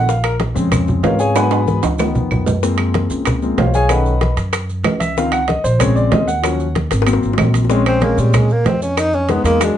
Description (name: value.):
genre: Afro-Cuban jazz.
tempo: 189 BPM.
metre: 4/4.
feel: straight.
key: Db major.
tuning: A4 = 440 Hz.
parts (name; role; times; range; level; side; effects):
warm concert grand piano; accompaniment; 0.0-9.8 s; Db3 to Cb6; -18 LUFS; left 2 dB; none.
upright bass; bass; 0.0-9.7 s; Ab1 to Bb2; -18 LUFS; equal; none.
bongos; percussion; 0.1-9.8 s; none; -25 LUFS; left 9 dB; none.
congas; percussion; 0.1-9.8 s; none; -22 LUFS; equal; none.
maracas; percussion; 0.1-9.8 s; none; -34 LUFS; right 6 dB; none.
claves; percussion; 0.2-9.8 s; none; -27 LUFS; right 5 dB; none.
timbales; percussion; 0.2-9.8 s; none; -22 LUFS; right 6 dB; none.
mellow tenor saxophone; melody; 7.9-9.8 s; G3 to Eb4; -17 LUFS; right 1 dB; plate reverb.
room: moderate studio ambience, RT60 0.5 s.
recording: nothing above 10.3 kHz.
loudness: -13 LUFS.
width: side -10 dB against mid.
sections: 0.0-7.7 A section; 7.7-9.8 A section.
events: grand piano solo 0.0-7.7; drum fill 1.4-2.6, 6.9-7.7; tenor saxophone solo 7.7-9.8.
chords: 0.1 Bbm7; 1.4 Abm7; 2.0 Db7; 2.6 Gbmaj9#11; 3.9 Cb9; 5.2 Dbmaj7; 5.8 Bbm7; 6.4 Ebm7; 7.1 Ab7; 7.7 Bbm9; 9.0 Fm7b5.